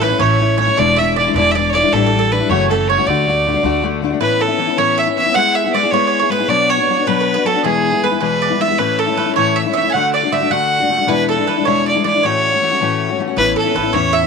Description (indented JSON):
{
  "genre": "celtic folk, Celtic jig",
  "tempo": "105 BPM (dotted quarters)",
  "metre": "6/8",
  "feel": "straight",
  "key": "D major, A major from 4.2 s",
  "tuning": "A4 = 440 Hz",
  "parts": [
    { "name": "bright fiddle", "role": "melody", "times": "0.0-14.3 s", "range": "G#4 to F#5", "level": "-16 LUFS", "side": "right 1 dB", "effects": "tape echo" },
    { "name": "mandolin", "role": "second line", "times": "0.0-14.3 s", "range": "G#4 to G#5", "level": "-19 LUFS", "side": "right 13 dB", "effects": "none" },
    { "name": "fingerpicked steel-string acoustic guitar", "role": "accompaniment", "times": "0.0-14.3 s", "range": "E2 to G#4", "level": "-18 LUFS", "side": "left 10 dB", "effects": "none" },
    { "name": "upright bass", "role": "bass", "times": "0.0-4.1, 13.4-14.3 s", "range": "E1 to E2", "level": "-21 LUFS", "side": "right 2 dB", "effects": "none" }
  ],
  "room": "light reverb",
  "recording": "1960s-style stereo with parts hard left and right",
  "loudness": "-13 LUFS",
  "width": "side -5 dB against mid",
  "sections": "0.0-4.2 A section; 4.2-13.4 B section",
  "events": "none",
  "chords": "0.0 A; 0.8 E7; 1.9 A7sus4; 2.5 F#m7; 3.1 D; 4.2 Aadd9; 5.4 E/G#; 6.5 Bm; 7.6 E; 8.8 A; 9.9 D; 11.1 E7; 12.2 A6; 13.4 Aadd9"
}